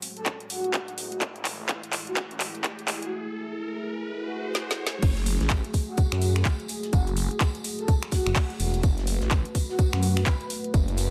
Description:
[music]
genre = bass house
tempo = 126 BPM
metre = 4/4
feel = swing 60% on 16ths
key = F# minor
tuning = A4 = 440 Hz
[part]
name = dark analog pad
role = sustained chords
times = 0.0-11.1 s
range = A3 to B4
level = -38 LUFS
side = equal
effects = chorus, sidechain pumping
[part]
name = garage drum kit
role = drums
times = 0.0-11.1 s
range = crash cymbal, finger snaps, handclaps, hi-hat, snare drum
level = -33 LUFS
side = equal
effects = none
[part]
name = riser and swell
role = sound effects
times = 0.0-5.0 s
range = none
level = -42 LUFS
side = equal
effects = none
[part]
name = breathy flute-like synth lead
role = melody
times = 0.2-10.5 s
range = F#4 to B4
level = -36 LUFS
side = equal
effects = ensemble chorus
[part]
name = electronic kick drum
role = drums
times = 0.3-10.9 s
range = none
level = -25 LUFS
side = equal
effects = high-pass filter on kick, high-pass filter on room
[part]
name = phased detuned saw bass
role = bass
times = 0.6-11.1 s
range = E1 to F#2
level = -29 LUFS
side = equal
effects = phaser, sidechain pumping, high-pass filter
[part]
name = cloth-damped thuddy drum kit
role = drums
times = 5.0-11.1 s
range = hi-hat, snare drum, tambourine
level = -44 LUFS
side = equal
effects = high-pass filter on hats, high-pass filter on snare, high-pass filter on perc, high-pass filter on room
[sound]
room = digital ambience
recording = high-pass filter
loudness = -27 LUFS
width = mono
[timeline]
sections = 0.0-5.0 A section; 5.0-11.1 B section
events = build-up 0.0-5.0; drum fill 0.0-3.1, 4.5-5.0; riser 0.0-5.0; filter sweep on analog synth pad 0.0-5.0; swell 4.1-5.0; drop 5.0-11.1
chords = 0.0 F#madd9

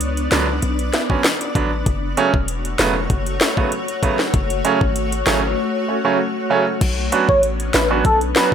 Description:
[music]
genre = dancehall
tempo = 97 BPM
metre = 4/4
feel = straight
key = F# minor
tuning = A4 = 440 Hz
[part]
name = granular cloud pad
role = sustained chords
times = 0.0-8.5 s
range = A3 to D5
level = -24 LUFS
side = left 2 dB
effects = built-in reverb, sidechain pumping
[part]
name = warm 808-style bass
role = bass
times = 0.0-8.3 s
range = E1 to C#2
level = -23 LUFS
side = left 1 dB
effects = none
[part]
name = island pop drum kit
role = drums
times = 0.0-8.5 s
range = crash cymbal, hi-hat, kick drum, snare drum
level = -20 LUFS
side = left 1 dB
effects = none
[part]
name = clear baby grand piano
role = accompaniment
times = 0.3-8.5 s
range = C#3 to F#4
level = -20 LUFS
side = right 5 dB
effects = sidechain pumping
[part]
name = warm velvety synth lead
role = melody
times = 7.3-8.5 s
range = A4 to C#5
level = -17 LUFS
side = equal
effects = chorus, ping-pong delay
[sound]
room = light reverb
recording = none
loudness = -16 LUFS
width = side -8 dB against mid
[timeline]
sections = 0.0-6.8 A section; 6.8-8.5 B section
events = none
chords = 0.0 Bmadd9; 1.9 F#m; 6.8 Bmadd9

